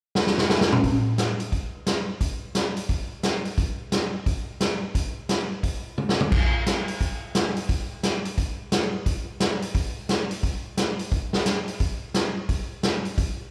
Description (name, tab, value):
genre	country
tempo	175 BPM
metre	4/4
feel	swing 63% on 8ths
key	none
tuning	none
part	swinging big-band drum kit	drums	0.2-13.3 s	crash cymbal, hi-hat, kick drum, snare drum, toms	-26 LUFS	equal	none
room	moderate lush hall reverb, RT60 2.1 s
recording	live gig heard through the venue's PA, club reverb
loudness	-26 LUFS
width	mono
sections	0.8-6.3 A section; 6.3-13.5 B section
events	drum fill 0.2-0.8, 6.0-6.3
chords	none